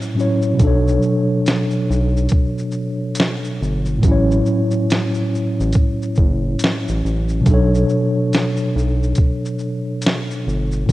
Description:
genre	lo-fi hip hop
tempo	70 BPM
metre	4/4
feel	swing 64% on 16ths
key	B minor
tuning	A4 = 440 Hz
part	mellow tine electric piano	accompaniment	0.0-10.9 s	A2 to C#5	-18 LUFS	equal	medium stereo tremolo, low-pass filter, cassette tape
part	boom bap sampler-style drum kit	drums	0.0-10.9 s	hi-hat, kick drum, shaker, snare drum	-19 LUFS	equal	cassette tape
part	round analog bass	bass	0.6-10.9 s	F#1 to B1	-19 LUFS	equal	none
room	light reverb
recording	home recording on cassette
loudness	-16 LUFS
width	side -17 dB against mid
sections	0.0-10.9 A section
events	none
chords	0.0 F#m7/A; 0.6 Bm9; 4.0 F#m7/A; 7.5 Bm9

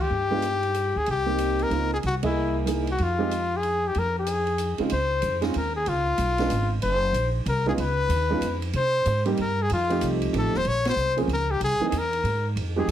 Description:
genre	jazz, small-group swing and bop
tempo	188 BPM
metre	3/4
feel	swing 64% on 8ths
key	F minor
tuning	A4 = 440 Hz
part	bright trumpet	melody	0.0-12.9 s	E4 to Db5	-25 LUFS	left 2 dB	none
part	upright bass	bass	0.0-12.9 s	Eb1 to C3	-27 LUFS	equal	none
part	warm concert grand piano	accompaniment	0.3-12.9 s	Db3 to D#5	-27 LUFS	right 3 dB	none
part	open jazz drum kit	drums	0.4-12.9 s	hi-hat, kick drum, ride cymbal, snare drum	-36 LUFS	right 2 dB	none
room	moderate club reverb, RT60 0.6 s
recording	heavily compressed radio sound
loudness	-22 LUFS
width	side -10 dB against mid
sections	0.0-4.9 A section; 4.9-12.6 B section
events	band accent 2.2, 10.8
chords	0.1 G5; 1.1 Cm7; 2.0 C7alt; 3.0 Fm; 4.9 Dbmaj7; 5.9 Db7; 6.8 Gbmaj7; 7.8 Db9; 8.7 C7(no3); 9.7 F7; 10.7 Bbm; 11.6 C7b13

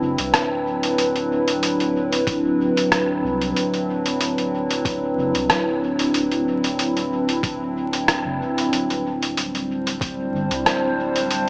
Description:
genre	ambient dub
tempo	93 BPM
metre	4/4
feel	swing 54% on 16ths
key	D mixolydian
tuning	A4 = 440 Hz
part	warbly tape-like pad	sustained chords	0.0-11.5 s	F#3 to C5	-20 LUFS	equal	chorus, built-in reverb, phaser
part	warm sub bass	bass	0.0-11.5 s	D1 to C2	-33 LUFS	equal	none
part	lo-fi sampler-style drum kit	drums	0.2-11.4 s	hi-hat, rim click	-22 LUFS	equal	none
part	electronic kick drum	drums	2.3-10.2 s	none	-26 LUFS	equal	none
room	wet spring reverb, RT60 2.3 s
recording	vinyl crackle, small speaker sound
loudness	-19 LUFS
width	side -33 dB against mid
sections	0.0-11.5 A section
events	none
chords	0.0 D13; 8.7 Cadd9/D

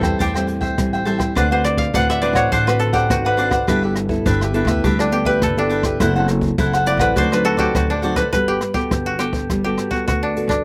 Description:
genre	samba and choro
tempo	103 BPM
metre	4/4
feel	straight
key	unclear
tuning	A4 = 440 Hz
part	koto	melody	0.0-10.6 s	D4 to F#5	-24 LUFS	equal	none
part	cavaquinho	accompaniment	0.0-8.3 s	D4 to G5	-24 LUFS	equal	slapback echo
part	nylon-string guitar	accompaniment	0.0-10.6 s	A2 to B4	-25 LUFS	equal	none
part	upright bass	bass	0.0-10.6 s	F#1 to E2	-25 LUFS	equal	none
part	jazz brush drum kit	drums	0.0-10.6 s	hi-hat, kick drum, rim click	-27 LUFS	equal	none
room	little or no reverb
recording	recorded outdoors, with no room sound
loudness	-18 LUFS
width	mono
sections	0.0-8.3 A section; 8.3-10.6 B section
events	koto solo 0.0-8.3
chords	0.0 Am7; 1.4 D6; 3.7 G69; 6.0 F#m7b5; 7.2 D7b9; 8.3 Gmaj9

